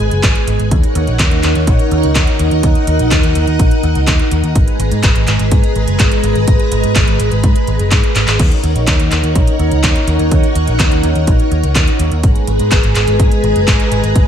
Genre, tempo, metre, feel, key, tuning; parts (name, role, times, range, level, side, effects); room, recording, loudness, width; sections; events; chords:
italo disco; 125 BPM; 4/4; straight; G# minor; A4 = 442 Hz
string machine, full ensemble; sustained chords; 0.0-14.3 s; G#3 to A#5; -16 LUFS; equal; ensemble chorus
vintage muted picked electric bass; bass; 0.0-14.3 s; F#1 to G#2; -15 LUFS; equal
house drum kit; drums; 0.1-14.3 s; crash cymbal, handclaps, hi-hat; -18 LUFS; equal; gated reverb
electronic kick drum; drums; 0.2-14.3 s; -13 LUFS; equal
little or no reverb; -10 LUFS; side -9 dB against mid
0.0-14.3 A section
drum fill 8.2
0.0 G#m; 0.7 D#m7; 4.6 G#madd9; 8.4 D#m7; 12.2 G#madd9